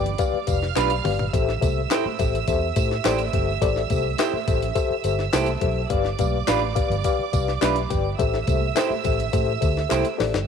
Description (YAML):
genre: uptempo 1960s-style soul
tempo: 105 BPM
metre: 4/4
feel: straight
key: A minor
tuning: A4 = 440 Hz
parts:
  - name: clear studio violin section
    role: second line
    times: 0.0-10.4 s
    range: D5 to F6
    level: -30 LUFS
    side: right 14 dB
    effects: none
  - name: reed electric piano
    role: accompaniment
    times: 0.0-10.4 s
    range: G2 to A5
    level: -25 LUFS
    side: left 9 dB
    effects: fast tremolo
  - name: vintage muted fingered electric bass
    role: bass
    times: 0.0-10.5 s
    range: F1 to A2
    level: -26 LUFS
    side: right 2 dB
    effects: none
  - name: jungle sampler-style drum kit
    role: drums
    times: 0.1-10.5 s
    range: hi-hat, kick drum, snare drum, toms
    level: -26 LUFS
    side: left 1 dB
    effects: none
  - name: congas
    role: percussion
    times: 0.1-10.3 s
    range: none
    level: -39 LUFS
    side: right 11 dB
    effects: none
  - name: tambourine and handclaps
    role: percussion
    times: 0.2-10.0 s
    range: none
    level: -36 LUFS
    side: left 3 dB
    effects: none
  - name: electric guitar through a small old amp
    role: stabs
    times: 0.8-10.0 s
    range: D4 to C5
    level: -27 LUFS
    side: right 11 dB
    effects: none
room: moderate echo chamber reverb, RT60 2.0 s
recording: 1960s-style stereo with parts hard left and right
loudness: -20 LUFS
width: side -7 dB against mid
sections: 0.0-10.5 A section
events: drum fill 0.8-1.3, 9.9-10.5; reed electric piano fill 5.1-5.9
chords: 0.0 G7; 1.3 Am7; 5.9 G7; 8.2 Am7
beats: 0.20 0.77 | 1.34 1.91 2.48 3.05 | 3.62 4.20 4.77 5.34 | 5.91 6.48 7.05 7.62 | 8.19 8.77 9.34 9.91